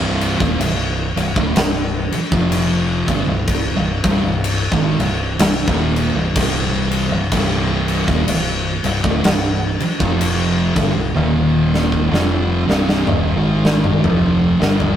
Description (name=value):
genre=stoner and doom metal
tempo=62 BPM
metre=4/4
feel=swing 59% on 8ths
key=C minor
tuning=A4 = 440 Hz
part: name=thick fuzz guitar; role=riff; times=0.0-15.0 s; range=C2 to Ab3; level=-23 LUFS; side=left 4 dB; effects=distortion
part: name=thick fuzz guitar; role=riff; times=0.0-15.0 s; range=C2 to Ab3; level=-20 LUFS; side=right 3 dB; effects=distortion
part: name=growling fingered electric bass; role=bass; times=0.0-15.0 s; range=C1 to Ab1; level=-22 LUFS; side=equal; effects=overdrive
part: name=big rock drum kit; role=drums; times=0.2-15.0 s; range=crash cymbal, kick drum, snare drum, toms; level=-19 LUFS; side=equal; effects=none
room=light reverb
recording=rough rehearsal-room recording, tube saturation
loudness=-15 LUFS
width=side -10 dB against mid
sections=0.0-15.0 A section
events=drum fill 11.2-15.0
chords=0.0 Cm; 11.2 Eb5; 12.1 Cm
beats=0.60 1.56 2.52 | 3.48 4.44 5.39 6.35 | 7.31 8.27 9.23 10.19 | 11.15 12.12 13.08 14.04